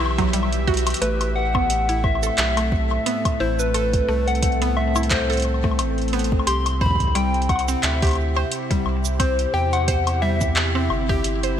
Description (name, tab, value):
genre	IDM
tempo	88 BPM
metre	4/4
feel	swing 56% on 16ths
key	A dorian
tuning	A4 = 440 Hz
part	soft struck synth lead	melody	0.0-11.6 s	B4 to C6	-25 LUFS	left 2 dB	chorus, tremolo, digital delay
part	warm analog pad	sustained chords	0.0-11.6 s	A2 to E5	-28 LUFS	equal	chorus
part	mallet-like synth pluck	arpeggios	0.0-11.5 s	F#3 to C5	-28 LUFS	right 2 dB	chorus, ping-pong delay
part	warm sub bass	bass	0.0-11.6 s	G1 to E2	-24 LUFS	equal	none
part	electro analog drum machine	drums	0.1-11.6 s	cabasa, handclaps, hi-hat, woodblock	-26 LUFS	left 2 dB	gated reverb
part	electronic kick drum	drums	0.2-11.2 s	none	-23 LUFS	equal	none
room	moderate lush hall reverb, RT60 3.1 s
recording	bright 1980s-style digital production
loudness	-18 LUFS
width	side -9 dB against mid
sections	0.0-11.6 A section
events	drum fill 0.7-1.0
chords	0.0 Emadd9; 1.0 Amadd9; 6.5 C